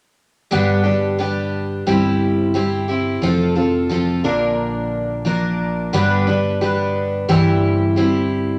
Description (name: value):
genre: folk rock and heartland rock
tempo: 89 BPM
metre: 4/4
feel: straight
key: unclear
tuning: A4 = 440 Hz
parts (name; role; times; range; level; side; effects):
- picked twelve-string acoustic guitar; accompaniment; 0.5-8.6 s; G2 to B4; -19 LUFS; equal; none
- fingered electric bass; bass; 0.5-8.6 s; F1 to Bb1; -28 LUFS; equal; none
room: moderate large studio reverb, RT60 0.9 s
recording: none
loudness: -18 LUFS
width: mono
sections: 0.5-8.6 A section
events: none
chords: 0.5 G; 1.9 C/G; 3.2 F; 4.2 Bb; 5.9 G; 7.3 C/G